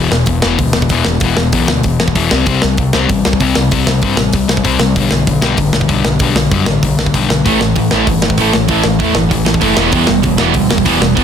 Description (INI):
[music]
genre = punk rock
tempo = 193 BPM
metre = 4/4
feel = straight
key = E minor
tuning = A4 = 439 Hz
[part]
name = sludgy distorted guitar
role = riff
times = 0.0-11.2 s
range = E2 to C4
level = -14 LUFS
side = left 6 dB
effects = overdrive
[part]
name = growling picked electric bass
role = bass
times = 0.0-11.2 s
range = E1 to G2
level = -18 LUFS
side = right 2 dB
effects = overdrive
[part]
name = tight metal drum kit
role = drums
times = 0.1-11.2 s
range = hi-hat, kick drum, snare drum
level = -16 LUFS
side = right 1 dB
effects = soft clipping on kick
[part]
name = distorted electric guitar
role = riff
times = 7.5-11.2 s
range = A2 to B3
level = -15 LUFS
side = right 19 dB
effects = distortion
[sound]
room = little or no reverb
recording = dense, heavily limited modern master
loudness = -10 LUFS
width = side -8 dB against mid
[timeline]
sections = 0.0-11.2 A section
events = none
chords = 0.0 E5; 2.3 C5; 5.0 G; 7.5 A5; 9.8 Em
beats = 0.27 0.58 0.90 | 1.21 1.52 1.84 2.15 | 2.46 2.78 3.09 3.40 | 3.71 4.03 4.34 4.65 | 4.96 5.27 5.58 5.90 | 6.21 6.52 6.83 7.14 | 7.45 7.76 8.07 8.38 | 8.69 9.00 9.31 9.62 | 9.93 10.24 10.55 10.86 | 11.17